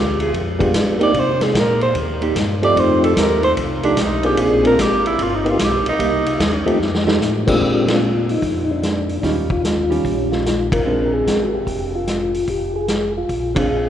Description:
soul jazz organ trio; 148 BPM; 4/4; swing 66% on 8ths; Bb mixolydian; A4 = 441 Hz
warm tenor saxophone; melody; 0.0-6.8 s; D4 to D5; -19 LUFS; right 1 dB
mellow tonewheel organ; bass; 0.0-13.9 s; F1 to C3; -25 LUFS; equal; slow rotary speaker
vintage drum kit; drums; 0.2-13.6 s; crash cymbal, hi-hat, kick drum, ride cymbal, snare drum; -22 LUFS; equal
percussive tonewheel organ; melody; 0.6-13.9 s; Ab3 to Bb4; -20 LUFS; left 2 dB; slow rotary speaker, chorus vibrato
hollow-body jazz guitar; accompaniment; 0.6-13.7 s; Eb3 to Ab4; -24 LUFS; right 3 dB
wet cathedral reverb, RT60 5.2 s; recorded in a church or concert hall, nothing above 10.4 kHz; -15 LUFS; side -10 dB against mid
0.0-7.6 A section; 7.6-13.9 B section
tenor saxophone solo 0.0-7.6; drum fill 6.8-7.2; band accent 7.8, 10.6, 13.5
0.0 G7b9; 1.1 Cm7; 2.8 F9; 4.4 Bb9; 5.2 G7b13; 6.0 Cm7; 6.8 F9; 7.6 Bb9; 9.2 Eb9; 10.9 Bb9; 12.5 Fm; 13.3 Bb9
0.33 0.74 | 1.14 1.55 1.95 2.35 | 2.76 3.16 3.57 3.97 | 4.38 4.78 5.18 5.59 | 5.99 6.40 6.80 7.20 | 7.61 8.01 8.42 8.82 | 9.23 9.63 10.04 10.45 | 10.85 11.26 11.66 12.07 | 12.48 12.88 13.29 13.70

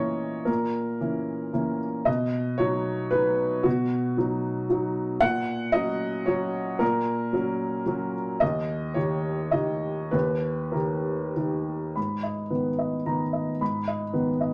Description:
neoclassical minimalist piano; 96-117 BPM; 3/4; rubato; G# minor; A4 = 441 Hz
dark upright piano; solo; 0.0-14.5 s; D#2 to B5; -27 LUFS; equal
moderate studio reverb, RT60 0.7 s; -27 LUFS; mono
0.0-12.0 A section; 12.0-14.5 B section
0.0 A#dim; 2.1 B; 5.2 F#/A#; 8.4 D#; 12.0 G#madd9
| 0.48 1.01 1.54 | 2.07 2.60 3.12 | 3.65 4.18 4.70 | 5.21 5.74 6.27 | 6.81 7.33 7.86 | 8.41 8.96 9.53 | 10.13 10.75 11.37 | 11.97 12.51 13.07 | 13.60 14.13

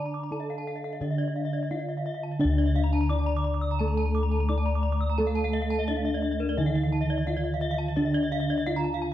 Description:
Balinese gamelan; 86 BPM; 4/4; straight; D pelog; A4 = 440 Hz
gamelan-type bronze metallophone; melody; 0.0-9.1 s; D4 to D5; -32 LUFS; left 2 dB
gamelan-type bronze metallophone; accompaniment; 0.0-9.1 s; D3 to D4; -34 LUFS; right 3 dB
gamelan-type bronze metallophone; arpeggios; 0.0-9.0 s; D5 to D6; -36 LUFS; right 5 dB
gamelan-type bossed gongs; bass; 0.0-9.1 s; D2 to D5; -27 LUFS; left 1 dB
gamelan-type bronze metallophone; arpeggios; 0.1-9.1 s; Bb4 to Eb6+35c; -35 LUFS; left 4 dB
moderate recital hall reverb, RT60 1.4 s; dark, warm production; -24 LUFS; side -12 dB against mid
0.0-2.4 A section; 2.4-9.1 A section
0.32 1.01 1.71 | 2.40 3.10 3.79 4.49 | 5.19 5.88 6.58 7.27 | 7.97 8.67

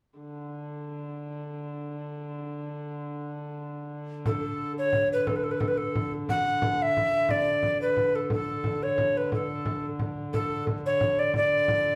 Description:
medieval dance; 118 BPM (dotted quarters); 6/8; straight; D major; A4 = 441 Hz
dark hurdy-gurdy; drone; 0.2-12.0 s; D3; -37 LUFS; equal
tenor recorder; melody; 4.3-12.0 s; A4 to F#5; -28 LUFS; equal
frame drum; percussion; 4.3-11.8 s; -35 LUFS; equal
wet large studio reverb, RT60 0.9 s; band playing live in one room; -28 LUFS; mono
0.2-4.2 A section; 4.2-12.0 B section
| 0.18 0.69 | 1.20 1.71 | 2.22 2.72 | 3.23 3.74 | 4.25 4.76 | 5.26 5.77 | 6.28 6.79 | 7.29 7.80 | 8.31 8.81 | 9.32 9.83 | 10.33 10.84 | 11.35 11.85

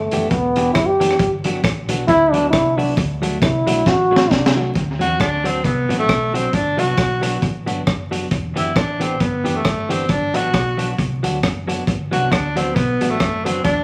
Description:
ska; 135 BPM; 4/4; swing 57% on 8ths; A4 = 437 Hz
mellow trombone; melody; 0.0-4.6 s; A3 to G4; -19 LUFS; equal
hollow-body short-scale fingered electric bass; bass; 0.0-13.8 s; E1 to E2; -28 LUFS; equal
clean electric guitar; accompaniment; 0.1-13.6 s; E3 to G4; -27 LUFS; equal; dub echo
crunchy breakbeat drum kit; drums; 0.1-13.8 s; hi-hat, kick drum, rim click, snare drum; -23 LUFS; equal; dub echo
breathy tenor saxophone; melody; 5.0-13.8 s; A3 to F#4; -23 LUFS; equal
moderate large studio reverb, RT60 1.2 s; vinyl crackle; -18 LUFS; mono
0.0-4.7 A section; 4.7-13.8 B section
trombone solo 0.0-4.7; drum fill 3.9-4.7
0.0 Em7; 1.2 Gmaj7; 3.0 D; 4.7 D7; 6.5 Gmaj7; 8.3 Em7; 10.1 Gmaj7
0.32 0.76 | 1.20 1.65 2.09 2.53 | 2.97 3.42 3.86 4.30 | 4.75 5.19 5.64 6.08 | 6.53 6.97 7.42 7.86 | 8.31 8.76 9.20 9.65 | 10.09 10.54 10.98 11.43 | 11.87 12.31 12.76 13.20 | 13.65

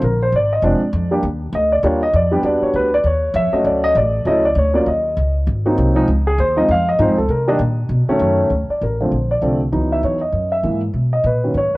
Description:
jazz piano trio; 198 BPM; 4/4; swing 60% on 8ths; A4 = 440 Hz
dark grand piano; melody; 0.0-11.8 s; D3 to F5; -16 LUFS; equal; cassette tape
upright bass; bass; 0.0-11.8 s; F1 to C3; -19 LUFS; equal
light reverb; home recording on cassette; -14 LUFS; side -20 dB against mid
0.0-8.5 A section; 8.5-11.8 B section
0.0 Bb7; 1.2 Ebmaj7; 2.4 Em7; 3.0 Ebsus2; 3.7 Dmaj7; 4.9 Dbsus2; 5.5 Ab7; 6.1 Dbmaj9; 7.3 Cm7; 7.9 B9; 8.5 Bbmaj7; 9.7 Dbm11; 10.3 Gb9; 10.9 Bmaj9
| 0.02 0.32 0.62 0.93 | 1.23 1.53 1.84 2.14 | 2.44 2.75 3.05 3.35 | 3.65 3.96 4.26 4.56 | 4.87 5.17 5.47 5.78 | 6.08 6.38 6.69 6.99 | 7.29 7.60 7.90 8.20 | 8.51 8.81 9.12 9.42 | 9.72 10.03 10.33 10.64 | 10.94 11.25 11.55

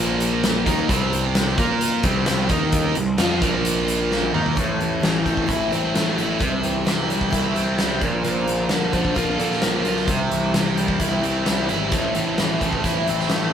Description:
classic rock; 130 BPM; 4/4; straight; C mixolydian; A4 = 440 Hz
overdriven electric guitar; riff; 0.0-13.5 s; A2 to Bb4; -25 LUFS; left 6 dB; phaser
overdriven electric guitar; riff; 0.0-13.5 s; A2 to Bb4; -24 LUFS; right 6 dB
fuzz picked electric bass; bass; 0.0-13.5 s; Ab1 to Bb2; -26 LUFS; equal; overdrive
big rock drum kit; drums; 0.2-13.4 s; hi-hat, kick drum, snare drum, toms; -24 LUFS; equal
picked twelve-string acoustic guitar; accompaniment; 4.6-13.5 s; A2 to F4; -32 LUFS; right 4 dB
electric slide guitar; second line; 8.2-10.1 s; A4 to C5; -27 LUFS; left 2 dB
moderate studio reverb, RT60 0.6 s; band playing live in one room; -18 LUFS; side -8 dB against mid
0.0-4.6 A section; 4.6-13.5 B section
drum fill 4.1-4.6
0.0 Bb5; 0.7 C5; 1.6 Bb5; 2.0 C5; 2.5 Eb5; 3.0 C5; 3.4 Bb5; 4.3 Eb5; 4.6 Am; 6.4 C; 8.0 Bb; 10.1 C; 11.9 Am
0.44 | 0.89 1.35 1.81 2.27 | 2.73 3.19 3.65 4.11 | 4.56 5.02 5.48 5.94 | 6.40 6.86 7.32 7.78 | 8.24 8.70 9.16 9.62 | 10.08 10.54 11.00 11.46 | 11.92 12.38 12.84 13.30

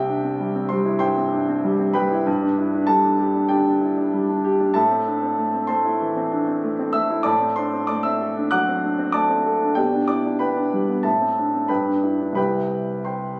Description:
classical, virtuoso piano study; 96 BPM; 4/4; rubato; C major; A4 = 440 Hz
warm concert grand piano; solo; 0.0-13.4 s; C2 to F#6; -21 LUFS; equal
light reverb; recorded on a phone in the room, club reverb; -21 LUFS; mono
0.0-13.4 A section
0.0 C; 2.3 G; 4.8 Am; 7.3 D7/A; 9.8 G/B; 11.0 Am; 11.7 G; 12.4 C
0.40 1.01 1.64 | 2.27 2.89 3.51 4.14 | 4.76 5.39 6.01 6.64 | 7.26 7.89 8.52 9.15 | 9.78 10.41 11.05 11.69 | 12.37 13.05

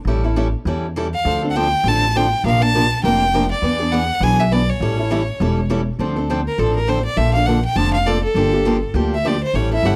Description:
acoustic string swing (jazz manouche); 203 BPM; 4/4; swing 58% on 8ths; D minor; A4 = 440 Hz
upright bass; bass; 0.0-10.0 s; E1 to E2; -22 LUFS; equal
picked steel-string acoustic guitar; accompaniment; 0.1-9.9 s; C3 to Bb4; -23 LUFS; equal
bright violin; melody; 1.1-10.0 s; A4 to A5; -22 LUFS; equal
studio reverb; dry, close 1970s-style studio recording; -18 LUFS; mono
0.0-6.0 A section; 6.0-10.0 B section
violin solo 6.0-10.0
0.1 A7; 1.3 Dm7; 2.4 Bbadd9; 3.6 E7; 4.8 A7; 6.0 Dm7; 7.2 Bbmaj7; 8.4 Gm7
| 0.07 0.36 0.66 0.96 | 1.25 1.55 1.85 2.14 | 2.44 2.74 3.03 3.33 | 3.62 3.92 4.22 4.51 | 4.81 5.10 5.40 5.70 | 5.99 6.29 6.58 6.88 | 7.17 7.47 7.76 8.06 | 8.36 8.65 8.95 9.24 | 9.54 9.83

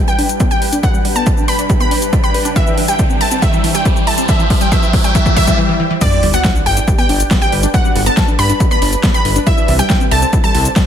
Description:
uplifting trance; 139 BPM; 4/4; straight; G major; A4 = 440 Hz
wide unison pluck; arpeggios; 0.0-10.8 s; E3 to G5; -21 LUFS; left 1 dB; sidechain pumping, tape echo
riser and sub drop; sound effects; 1.0-7.7 s; -22 LUFS; equal
wide unison pluck; melody; 0.1-10.8 s; D5 to B5; -19 LUFS; equal; sidechain pumping, tape echo
big-room dance drum kit; drums; 0.1-10.8 s; crash cymbal, hi-hat, shaker, snare drum; -21 LUFS; equal; overdrive, small room ambience
electronic kick drum; drums; 0.4-10.8 s; -14 LUFS; equal; overdrive, small room ambience
plucky unison lead; second line; 6.0-10.8 s; D5 to B5; -22 LUFS; equal; cassette tape, sidechain pumping, tape echo
fat analog bass; bass; 6.2-10.7 s; G1 to C2; -16 LUFS; equal; sidechain pumping
light reverb, digital ambience; -11 LUFS; side -9 dB against mid
0.0-6.0 A section; 6.0-10.9 B section
build-up 0.0-6.0; filter sweep on synth arpeggio sound 0.0-6.0; riser 1.0-5.6; drum fill 2.6-5.6; break 5.6-6.0; drop 6.0-10.9; impact 6.0-7.7
0.0 G; 2.6 C; 6.0 G; 9.5 C
0.40 | 0.83 1.26 1.70 2.13 | 2.56 2.99 3.42 3.85 | 4.29 4.72 5.15 5.58 | 6.01 6.45 6.88 7.31 | 7.74 8.17 8.60 9.04 | 9.47 9.90 10.33 10.76

